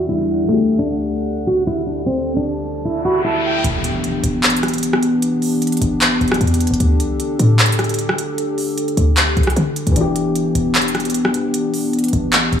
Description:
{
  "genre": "hip hop, trap",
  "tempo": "152 BPM",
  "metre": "4/4",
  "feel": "half-time",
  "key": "E minor",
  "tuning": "A4 = 441 Hz",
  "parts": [
    { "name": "flamenco guitar", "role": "melody", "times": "0.0-3.6 s", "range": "A3 to F#4", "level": "-19 LUFS", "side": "right 1 dB", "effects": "low-pass filter, tape echo" },
    { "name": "jazz flute", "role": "second line", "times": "0.0-3.6 s", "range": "E5 to B5", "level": "-31 LUFS", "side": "right 3 dB", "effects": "tape echo" },
    { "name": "dark concert grand piano", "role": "accompaniment", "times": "0.0-3.7, 9.9-12.6 s", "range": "D3 to G4", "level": "-23 LUFS", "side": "left 5 dB", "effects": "low-pass filter" },
    { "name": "dark analog pad", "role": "sustained chords", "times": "0.0-12.6 s", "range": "D2 to D5", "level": "-20 LUFS", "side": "left 1 dB", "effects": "chorus" },
    { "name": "riser and impact", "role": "sound effects", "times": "2.1-5.2 s", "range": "none", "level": "-27 LUFS", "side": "left 2 dB", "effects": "none" },
    { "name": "short 808-style bass", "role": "bass", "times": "3.6-12.6 s", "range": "E1 to D3", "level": "-18 LUFS", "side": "equal", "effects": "none" },
    { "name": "trap drum kit", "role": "drums", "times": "3.6-12.6 s", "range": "handclaps, hi-hat, rim click", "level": "-19 LUFS", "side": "equal", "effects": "none" }
  ],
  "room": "moderate lush hall reverb, RT60 1.6 s, small room reverb",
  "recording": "low-pass filter",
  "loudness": "-15 LUFS",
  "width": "side -8 dB against mid",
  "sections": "0.0-3.6 A section; 3.6-12.6 B section",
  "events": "filter sweep 0.0-3.6; riser 2.1-3.6; impact 3.6-5.2",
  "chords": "0.5 Dsus4; 3.6 Em7; 6.8 Dsus4; 10.0 Em7",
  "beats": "0.09 | 0.49 0.88 1.28 1.67 | 2.06 2.46 2.85 3.25 | 3.64 4.04 4.43 4.83 | 5.22 5.62 6.01 6.41 | 6.80 7.20 7.59 7.99 | 8.38 8.78 9.17 9.56 | 9.96 10.36 10.75 11.14 | 11.54 11.93 12.33"
}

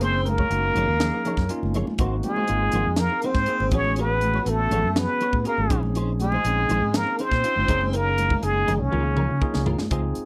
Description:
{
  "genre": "electric jazz fusion",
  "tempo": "121 BPM",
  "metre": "4/4",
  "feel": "straight",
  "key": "Db major",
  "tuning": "A4 = 441 Hz",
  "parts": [
    { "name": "trumpet with plunger mute", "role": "melody", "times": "0.0-9.7 s", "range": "Db4 to C#5", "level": "-27 LUFS", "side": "equal", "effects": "slapback echo" },
    { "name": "breathy tenor saxophone", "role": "second line", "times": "0.0-9.7 s", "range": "Db3 to C#4", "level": "-33 LUFS", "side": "equal", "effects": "none" },
    { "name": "bell-like tine electric piano", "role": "accompaniment", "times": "0.0-10.3 s", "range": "Bb3 to Ab5", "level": "-33 LUFS", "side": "equal", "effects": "none" },
    { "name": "clean electric guitar", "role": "stabs", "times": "0.0-10.1 s", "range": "F3 to Db5", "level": "-35 LUFS", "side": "equal", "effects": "ensemble chorus" },
    { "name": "fretless electric bass", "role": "bass", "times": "0.0-10.2 s", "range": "Gb1 to Db3", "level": "-28 LUFS", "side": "equal", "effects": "none" },
    { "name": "crisp fusion drum kit", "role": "drums", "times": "0.0-10.3 s", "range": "hi-hat, kick drum, snare drum, toms", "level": "-29 LUFS", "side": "equal", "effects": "none" },
    { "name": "congas", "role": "percussion", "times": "0.3-9.9 s", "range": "none", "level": "-34 LUFS", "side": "equal", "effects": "none" }
  ],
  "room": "little or no reverb",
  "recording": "dry, close 1970s-style studio recording",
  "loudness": "-23 LUFS",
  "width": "mono",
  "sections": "0.0-9.9 A section",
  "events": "tine electric piano fill 1.0-2.0; drum fill 8.9-9.9",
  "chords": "0.0 Gb69; 2.0 Ab9; 3.7 Amaj13; 5.7 Bbm11; 7.7 Gb69; 8.9 Db6",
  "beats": "| 0.01 0.51 1.00 1.50 | 1.99 2.49 2.98 3.48 | 3.98 4.47 4.97 5.46 | 5.96 6.45 6.95 7.44 | 7.94 8.43 8.93 9.43 | 9.92"
}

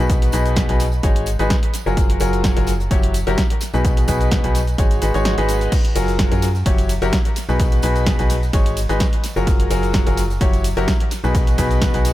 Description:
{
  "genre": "piano house",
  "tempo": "128 BPM",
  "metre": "4/4",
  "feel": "swing 54% on 16ths",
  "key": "F# major",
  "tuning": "A4 = 439 Hz",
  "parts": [
    { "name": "clear concert grand piano", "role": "riff", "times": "0.0-12.1 s", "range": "B2 to C#5", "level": "-21 LUFS", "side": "left 1 dB", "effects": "sidechain pumping, dub echo" },
    { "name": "organ-like FM bass", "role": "bass", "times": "0.0-12.1 s", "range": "F#1 to F#2", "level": "-20 LUFS", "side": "equal", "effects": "sidechain pumping" },
    { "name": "electronic kick drum", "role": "drums", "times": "0.1-11.9 s", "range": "none", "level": "-18 LUFS", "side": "equal", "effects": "none" },
    { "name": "punchy analog drum machine", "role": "drums", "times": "0.1-12.1 s", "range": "crash cymbal, hi-hat, ride cymbal, shaker, snare drum", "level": "-27 LUFS", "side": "equal", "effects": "dub echo" },
    { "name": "tambourine", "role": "percussion", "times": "0.1-12.1 s", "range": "none", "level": "-38 LUFS", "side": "right 4 dB", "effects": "dub echo" },
    { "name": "swell", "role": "sound effects", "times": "5.0-5.7 s", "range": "none", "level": "-33 LUFS", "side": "right 4 dB", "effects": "none" }
  ],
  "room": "little or no reverb",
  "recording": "echo-heavy mix",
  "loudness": "-15 LUFS",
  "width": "side -15 dB against mid",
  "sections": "0.0-12.1 A section",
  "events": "kick drops out 5.3-5.7",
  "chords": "0.0 B6; 1.0 G#m7; 2.0 F#maj9; 2.9 F#7b9; 3.6 B6; 4.8 G#m7; 5.7 F#maj9; 6.7 F#7b9; 7.4 B6; 8.5 G#m7; 9.5 F#maj9; 10.4 F#7b9; 11.1 B6",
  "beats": "| 0.10 0.56 1.03 1.50 | 1.97 2.44 2.91 3.38 | 3.85 4.32 4.78 5.25 | 5.72 6.19 6.66 7.13 | 7.60 8.06 8.53 9.00 | 9.47 9.94 10.41 10.88 | 11.35 11.81"
}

